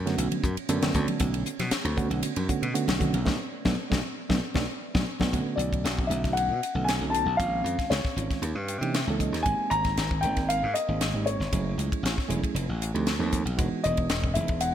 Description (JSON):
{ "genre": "electric jazz fusion", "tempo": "116 BPM", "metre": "4/4", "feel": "straight", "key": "unclear", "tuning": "A4 = 441 Hz", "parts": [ { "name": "slap bass", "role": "bass", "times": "0.0-14.7 s", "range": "E1 to C3", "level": "-29 LUFS", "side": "equal", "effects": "none" }, { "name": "bright reed electric piano", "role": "accompaniment", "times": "0.1-14.7 s", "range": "D3 to A5", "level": "-31 LUFS", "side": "right 5 dB", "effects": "spring reverb" }, { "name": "tight funk drum kit", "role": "drums", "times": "0.1-14.7 s", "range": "hi-hat, kick drum, ride cymbal, snare drum", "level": "-30 LUFS", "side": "left 1 dB", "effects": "gated reverb" }, { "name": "congas", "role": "percussion", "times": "0.3-5.3 s", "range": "none", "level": "-34 LUFS", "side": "left 4 dB", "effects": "none" }, { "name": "dark baby grand piano", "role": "melody", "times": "5.6-14.7 s", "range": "C#5 to A#5", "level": "-29 LUFS", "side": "left 2 dB", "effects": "none" } ], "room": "light reverb, studio reverb", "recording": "bright 1980s-style digital production", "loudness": "-24 LUFS", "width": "side -10 dB against mid", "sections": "0.0-5.3 A section; 5.3-14.7 B section", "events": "reed electric piano fill 0.4-1.2, 8.4-9.5, 12.8-13.6; band accent 3.3-5.3; drum fill 4.8-5.3", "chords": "0.0 Bm9; 7.4 A#m11; 8.4 D#7b9; 9.5 G#maj9; 11.5 F#m9; 12.6 F9; 13.6 Emaj9" }